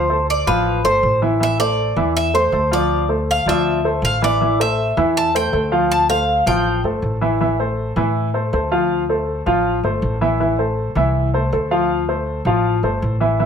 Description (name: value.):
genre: latin, Cuban son and guajira.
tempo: 160 BPM.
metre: 4/4.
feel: straight.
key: A minor.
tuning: A4 = 440 Hz.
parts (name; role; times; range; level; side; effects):
Cuban tres; melody; 0.0-6.8 s; B4 to A5; -18 LUFS; equal; none.
warm baby grand piano; arpeggios; 0.0-13.5 s; E3 to F5; -18 LUFS; equal; none.
upright bass; bass; 0.0-13.5 s; G1 to A2; -22 LUFS; equal; none.
room: light reverb.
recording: none.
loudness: -16 LUFS.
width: side -7 dB against mid.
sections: 0.0-7.4 A section; 7.4-13.5 B section.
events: Cuban tres solo 0.0-7.4.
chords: 0.0 Dm7; 1.4 Am; 5.9 Dm7; 7.4 Am; 8.9 Dm7; 10.4 Am; 11.9 Dm7.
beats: 0.29 0.66 1.03 | 1.41 1.78 2.16 2.53 | 2.91 3.28 3.66 4.03 | 4.41 4.78 5.15 5.53 | 5.90 6.28 6.65 7.03 | 7.40 7.78 8.15 8.53 | 8.90 9.28 9.65 10.03 | 10.40 10.78 11.15 11.52 | 11.90 12.27 12.65 13.02 | 13.40.